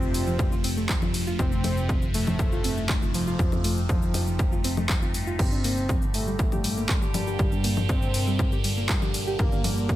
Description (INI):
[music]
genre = melodic techno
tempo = 120 BPM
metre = 4/4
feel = straight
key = unclear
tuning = A4 = 439 Hz
[part]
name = fat analog lead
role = melody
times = 0.0-10.0 s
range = F3 to C4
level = -32 LUFS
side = equal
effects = sidechain pumping, dub echo
[part]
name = evolving wavetable pad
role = sustained chords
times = 0.0-10.0 s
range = Bb2 to G4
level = -33 LUFS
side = left 1 dB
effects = phaser, built-in reverb, sidechain pumping
[part]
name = plucky analog bass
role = bass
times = 0.0-10.0 s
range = F1 to G1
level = -29 LUFS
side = equal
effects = tube saturation, sidechain pumping
[part]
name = analog drone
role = drone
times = 0.0-10.0 s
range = G2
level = -40 LUFS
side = equal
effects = none
[part]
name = techno drum kit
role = drums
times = 0.0-10.0 s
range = congas, crash cymbal, handclaps, hi-hat, shaker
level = -31 LUFS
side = left 2 dB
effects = overdrive, sidechain pumping on perc, studio reverb, sidechain pumping on hats, sidechain pumping on cymbals
[part]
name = soft round pluck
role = arpeggios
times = 0.3-9.7 s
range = F3 to G4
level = -34 LUFS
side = right 1 dB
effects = chorus, cassette tape, sidechain pumping, digital delay
[part]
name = electronic kick drum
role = drums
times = 0.4-10.0 s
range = none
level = -25 LUFS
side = equal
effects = overdrive, studio reverb
[sound]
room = digital ambience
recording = none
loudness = -22 LUFS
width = side -14 dB against mid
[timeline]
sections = 0.0-10.0 A section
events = none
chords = 0.0 F; 5.4 Gm